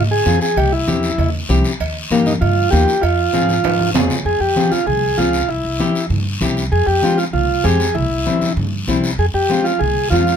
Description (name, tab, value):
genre	latin, cumbia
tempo	195 BPM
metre	4/4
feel	straight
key	F minor, F harmonic minor from 4.3 s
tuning	A4 = 440 Hz
part	combo organ	melody	0.0-10.4 s	Eb4 to Ab4	-17 LUFS	right 1 dB	none
part	upright bass	bass	0.0-10.4 s	C2 to Ab2	-19 LUFS	equal	none
part	nylon-string guitar	accompaniment	0.3-10.3 s	G3 to Ab4	-20 LUFS	left 5 dB	none
part	congas	percussion	0.3-10.3 s	none	-23 LUFS	equal	none
part	guiro	percussion	0.3-10.4 s	none	-27 LUFS	left 3 dB	none
part	cowbell and timbales	percussion	0.6-4.2 s	none	-24 LUFS	right 7 dB	none
room	light reverb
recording	close, detailed microphones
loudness	-14 LUFS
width	side -8 dB against mid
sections	0.0-4.3 A section; 4.3-10.4 B section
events	drum fill 3.6-4.3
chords	0.0 Fm; 0.6 C; 1.8 Eb; 3.0 Fm; 5.5 C; 6.7 Fm; 8.0 C; 9.2 Fm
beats	0.26 | 0.57 0.87 1.18 1.49 | 1.80 2.10 2.41 2.72 | 3.03 3.34 3.64 3.95 | 4.26 4.57 4.88 5.18 | 5.49 5.80 6.11 6.42 | 6.72 7.03 7.34 7.65 | 7.96 8.26 8.57 8.88 | 9.19 9.50 9.81 10.12